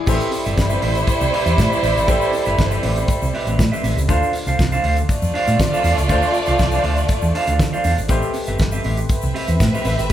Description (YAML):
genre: disco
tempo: 120 BPM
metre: 4/4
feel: straight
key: A minor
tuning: A4 = 441 Hz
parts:
  - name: clear grand piano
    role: accompaniment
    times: 0.0-10.1 s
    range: D3 to C5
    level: -28 LUFS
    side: left 4 dB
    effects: none
  - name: rich studio violin section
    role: second line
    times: 0.1-10.1 s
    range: G3 to E5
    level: -22 LUFS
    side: right 1 dB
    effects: none
  - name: clean electric guitar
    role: accompaniment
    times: 0.1-10.1 s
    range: C4 to F5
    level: -24 LUFS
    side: right 4 dB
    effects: none
  - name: hollow-body short-scale fingered electric bass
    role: bass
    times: 0.1-10.1 s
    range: G1 to D3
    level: -20 LUFS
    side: equal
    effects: none
  - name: damped 70s drum kit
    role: drums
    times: 0.1-10.1 s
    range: crash cymbal, hi-hat, kick drum, snare drum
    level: -22 LUFS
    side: equal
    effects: none
  - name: tube shaker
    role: percussion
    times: 0.1-10.1 s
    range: none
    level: -35 LUFS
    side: left 5 dB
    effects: none
room: moderate large studio reverb, RT60 1.2 s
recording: band playing live in one room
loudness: -16 LUFS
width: side -11 dB against mid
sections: 0.1-10.1 A section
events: none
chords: 0.1 Am9; 4.1 Dm7; 8.1 Am9